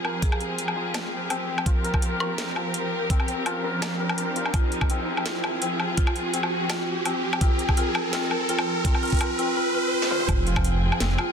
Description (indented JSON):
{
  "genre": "half-time drum and bass",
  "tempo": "167 BPM",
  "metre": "4/4",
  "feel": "swing 54% on 16ths, half-time",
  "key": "F minor",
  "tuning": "A4 = 440 Hz",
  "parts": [
    { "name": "clear symphonic string section", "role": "sustained chords", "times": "0.0-11.3 s", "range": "F3 to G5", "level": "-30 LUFS", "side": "equal", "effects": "sidechain pumping" },
    { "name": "santur", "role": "arpeggios", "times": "0.0-11.3 s", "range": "C4 to Bb4", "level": "-31 LUFS", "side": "left 4 dB", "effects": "low-pass filter, ping-pong delay" },
    { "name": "drum and bass drum kit", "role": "drums", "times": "0.0-11.3 s", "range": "hi-hat, snare drum, toms, woodblock", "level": "-30 LUFS", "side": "left 1 dB", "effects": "high-pass filter on hats, high-pass filter on perc, high-pass filter on snare, high-pass filter on toms, high-pass filter on room" },
    { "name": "riser", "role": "sound effects", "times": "1.3-10.3 s", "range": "none", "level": "-31 LUFS", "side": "right 2 dB", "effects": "none" },
    { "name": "marimba with medium hard mallets", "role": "melody", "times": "0.2-0.4, 4.5-11.3 s", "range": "F4 to Ab4", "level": "-31 LUFS", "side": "right 1 dB", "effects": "vintage 12-bit sampler grit, ping-pong delay" },
    { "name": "electronic kick drum", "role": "drums", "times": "0.2-10.6 s", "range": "none", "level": "-23 LUFS", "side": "equal", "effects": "none" },
    { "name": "dark detuned saw bass", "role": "bass", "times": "10.3-11.2 s", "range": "F1", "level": "-23 LUFS", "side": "equal", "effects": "none" },
    { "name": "flickering grainy texture", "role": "texture", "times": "10.7-11.3 s", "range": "F4 to F5", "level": "-45 LUFS", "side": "right 4 dB", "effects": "none" }
  ],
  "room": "light reverb",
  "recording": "dense, heavily limited modern master",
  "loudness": "-22 LUFS",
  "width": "side -7 dB against mid",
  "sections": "0.0-10.3 A section; 10.3-11.3 B section",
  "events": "build-up 0.0-10.3; filter sweep on santur 0.0-10.3; riser 1.3-10.3; drum fill 10.0; drop 10.3-11.3",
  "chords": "0.0 Fmadd9",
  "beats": "| 0.23 0.59 0.94 1.30 | 1.66 2.02 2.38 2.74 | 3.10 3.46 3.82 4.18 | 4.54 4.90 5.26 5.62 | 5.97 6.33 6.69 7.05 | 7.41 7.77 8.13 8.49 | 8.85 9.21 9.57 9.93 | 10.29 10.65 11.01"
}